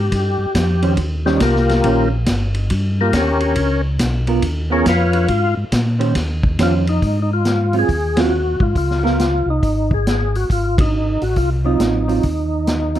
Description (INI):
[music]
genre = soul jazz organ trio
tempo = 139 BPM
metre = 4/4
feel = swing 65% on 8ths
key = unclear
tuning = A4 = 438 Hz
[part]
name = overdriven tonewheel organ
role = melody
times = 0.0-13.0 s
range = G3 to F5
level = -19 LUFS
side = left 2 dB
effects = chorus vibrato, slow rotary speaker
[part]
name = mellow tonewheel organ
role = bass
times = 0.0-13.0 s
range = G1 to Bb2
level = -19 LUFS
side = equal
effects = chorus vibrato, slow rotary speaker
[part]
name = vintage drum kit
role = drums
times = 0.1-13.0 s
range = hi-hat, kick drum, ride cymbal, snare drum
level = -21 LUFS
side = equal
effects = none
[part]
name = vintage hollow-body jazz guitar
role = accompaniment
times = 0.8-13.0 s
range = Eb3 to C5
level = -21 LUFS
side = right 6 dB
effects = none
[sound]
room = light reverb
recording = dark, warm production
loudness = -15 LUFS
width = side -12 dB against mid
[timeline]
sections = 0.0-7.0 A section; 7.0-13.0 B section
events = tonewheel organ solo 0.0-7.0; band accent 8.1, 10.7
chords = 0.1 Eb13; 3.6 Db13; 5.3 Ab69; 6.2 Eb13; 7.0 Ab6; 8.8 Dbadd9; 10.5 Ab6